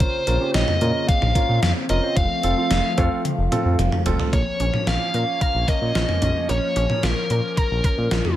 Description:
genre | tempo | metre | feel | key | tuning
synth-pop | 111 BPM | 4/4 | straight | unclear | A4 = 440 Hz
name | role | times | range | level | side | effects
biting lead guitar | melody | 0.0-8.3 s | Bb4 to F5 | -24 LUFS | equal | overdrive, tape echo
warm grand piano | accompaniment | 0.0-4.3 s | C4 to C5 | -27 LUFS | right 4 dB | none
chorused pulse-width pad | sustained chords | 0.0-8.4 s | Db3 to Db4 | -29 LUFS | left 1 dB | none
smooth synth bass | bass | 0.0-8.2 s | F1 to Bb2 | -22 LUFS | equal | none
gated 80s digital drum machine | drums | 0.0-8.4 s | cowbell, hi-hat, kick drum, snare drum, toms | -23 LUFS | equal | gated reverb, gated reverb snare, overdrive
wide unison pluck | arpeggios | 4.3-8.3 s | Bb3 to Bb5 | -32 LUFS | right 4 dB | tape echo
room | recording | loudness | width
light reverb | none | -18 LUFS | side -13 dB against mid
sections
0.0-4.3 A section; 4.3-8.4 B section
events
drum fill 3.2-4.3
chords
0.0 Bbmadd9; 2.2 F; 4.3 Bbm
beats
| 0.01 0.55 1.09 1.63 | 2.17 2.71 3.25 3.79 | 4.33 4.87 5.41 5.95 | 6.49 7.03 7.57 8.11

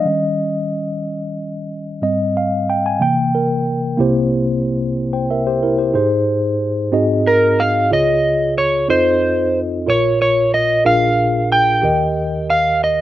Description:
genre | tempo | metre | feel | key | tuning
gospel | 61 BPM (dotted quarters) | 6/8 | straight | Ab major | A4 = 440 Hz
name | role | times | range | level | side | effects
mellow tine electric piano | accompaniment | 0.0-13.0 s | Bb1 to Ab5 | -17 LUFS | equal | medium stereo tremolo, slapback echo
electric slide guitar | melody | 7.3-13.0 s | Bb4 to G5 | -15 LUFS | right 1 dB | none
room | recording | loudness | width
little or no reverb | recorded outdoors, with no room sound | -14 LUFS | side -13 dB against mid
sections
0.0-4.0 A section; 4.0-5.9 B section; 5.9-13.0 C section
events
tine electric piano solo 0.0-4.0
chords
0.1 Eb7; 2.0 Abmaj7; 3.0 C7; 5.9 Ab; 6.9 Ab7; 7.9 Db; 8.9 F7; 9.9 Bbm; 10.9 Bb7; 11.8 Eb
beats
| 0.05 1.04 | 2.02 3.00 | 3.98 4.97 | 5.95 6.93 | 7.91 8.89 | 9.87 10.85 | 11.83 12.81

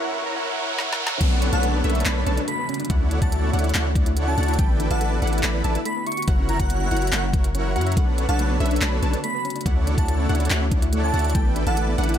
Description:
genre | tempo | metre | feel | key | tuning
future bass | 142 BPM | 4/4 | half-time | B minor | A4 = 440 Hz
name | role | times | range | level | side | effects
dense compressed supersaw | riff | 0.0-12.2 s | D4 to B5 | -27 LUFS | right 1 dB | cassette tape, sidechain pumping
riser and downlifter | sound effects | 0.0-4.6 s | none | -30 LUFS | right 1 dB | none
trap drum kit | drums | 0.8-12.2 s | crash cymbal, handclaps, hi-hat, snare drum | -29 LUFS | equal | high-pass filter on snare, high-pass filter on hats, high-pass filter on cymbals
ethereal airy pad | sustained chords | 2.0-12.2 s | C#3 to G4 | -33 LUFS | equal | ensemble chorus, built-in reverb, sidechain pumping
soft round pluck | arpeggios | 1.2-12.1 s | A3 to E5 | -32 LUFS | equal | chorus, sidechain pumping, dub echo
wide unison pluck | arpeggios | 1.2-12.2 s | E5 to B5 | -36 LUFS | left 1 dB | sidechain pumping, dub echo
long sustained 808-style bass | bass | 1.2-12.2 s | F#1 to F#2 | -22 LUFS | equal | sidechain pumping
electronic kick drum | drums | 1.2-11.4 s | none | -21 LUFS | equal | none
airy dreamy lead | melody | 1.5-11.8 s | F#5 to C#6 | -30 LUFS | right 1 dB | chorus, sidechain pumping, dub echo
room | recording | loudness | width
little or no reverb | high-pass filter | -19 LUFS | side -10 dB against mid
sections
0.0-1.2 A section; 1.2-12.2 B section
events
break 0.0-1.2; build-up 0.0-1.2; riser 0.0-1.2; filter sweep 0.0-1.2; drum fill 0.8-1.2; drop 1.2-12.2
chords
0.0 F#7; 1.2 Bm9; 2.9 Dmaj9; 4.6 A9sus4; 6.1 F#7; 8.0 Bm9; 9.7 Dmaj9; 11.3 A9sus4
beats
0.36 0.79 | 1.21 1.63 2.05 2.48 | 2.90 3.32 3.74 4.17 | 4.59 5.01 5.43 5.86 | 6.28 6.70 7.12 7.55 | 7.97 8.39 8.81 9.24 | 9.66 10.08 10.51 10.93 | 11.35 11.77

